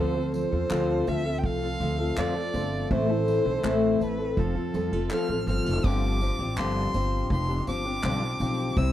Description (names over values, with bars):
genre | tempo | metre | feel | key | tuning
acoustic pop | 82 BPM | 4/4 | straight | unclear | A4 = 439 Hz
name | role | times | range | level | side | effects
warm violin | melody | 0.0-8.9 s | A4 to F6 | -32 LUFS | right 2 dB | none
fingerpicked twelve-string acoustic guitar | accompaniment | 0.0-8.9 s | G2 to A4 | -28 LUFS | left 3 dB | none
fingerpicked steel-string acoustic guitar | arpeggios | 0.0-6.4 s | E3 to C4 | -34 LUFS | right 9 dB | none
upright bass | bass | 0.0-8.9 s | F1 to F2 | -29 LUFS | equal | none
unplugged drum kit | drums | 0.3-8.9 s | crash cymbal, handclaps, kick drum, tambourine | -32 LUFS | equal | none
room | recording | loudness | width
studio ambience | dry, close 1970s-style studio recording | -24 LUFS | side -12 dB against mid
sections
0.0-5.8 A section; 5.8-8.9 B section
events
none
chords
0.0 Dm7; 2.9 Am; 4.4 F; 5.8 G7sus4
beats
0.71 1.44 2.17 | 2.91 3.64 4.37 5.11 | 5.84 6.57 7.30 8.04 | 8.77